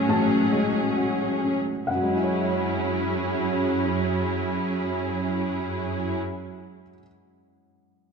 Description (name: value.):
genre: cinematic, emotional film score for orchestra.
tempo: 68 BPM.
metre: 4/4.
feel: rubato.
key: F# minor.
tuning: A4 = 438 Hz.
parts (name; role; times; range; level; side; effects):
warm symphonic violin section; second line; 0.0-6.2 s; C#4 to G#4; -29 LUFS; left 5 dB; none.
felt-muted upright piano; accompaniment; 0.0-8.1 s; A1 to A5; -27 LUFS; left 3 dB; none.
rich symphonic viola section; accompaniment; 0.0-6.2 s; F#3 to C#4; -27 LUFS; right 5 dB; none.
warm chamber cello section; bass; 0.0-6.2 s; F#2 to A2; -30 LUFS; right 3 dB; none.
room: moderate concert hall reverb, RT60 2.1 s.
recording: dark, warm production, nothing above 11.0 kHz.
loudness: -23 LUFS.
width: side -5 dB against mid.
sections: 0.0-1.9 A section; 1.9-5.4 B section.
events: slowing down 0.0-1.9.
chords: 0.0 F#madd9/A; 1.9 F#sus2.